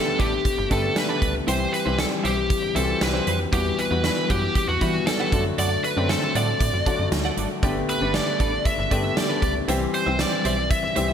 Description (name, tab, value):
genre	1980s-style pop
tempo	117 BPM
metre	4/4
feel	straight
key	G major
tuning	A4 = 440 Hz
part	biting lead guitar	melody	0.0-11.1 s	F#4 to E5	-25 LUFS	equal	overdrive
part	warm grand piano	accompaniment	0.0-11.1 s	D3 to G4	-26 LUFS	left 4 dB	none
part	twelve-string electric guitar	riff	0.1-11.1 s	D4 to F#5	-32 LUFS	right 5 dB	analog chorus
part	slap-like FM bass	bass	0.2-11.1 s	G1 to E3	-27 LUFS	right 1 dB	none
part	huge arena drum kit	drums	0.2-11.1 s	hi-hat, kick drum, snare drum	-26 LUFS	right 1 dB	gated reverb
room	moderate lush hall reverb, RT60 1.6 s, small room ambience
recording	bright 1980s-style digital production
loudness	-20 LUFS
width	side -8 dB against mid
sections	0.0-11.1 A section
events	none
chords	0.0 Gadd9; 1.5 C; 3.5 Emadd9; 5.3 D/F#; 7.6 Gadd9; 9.7 C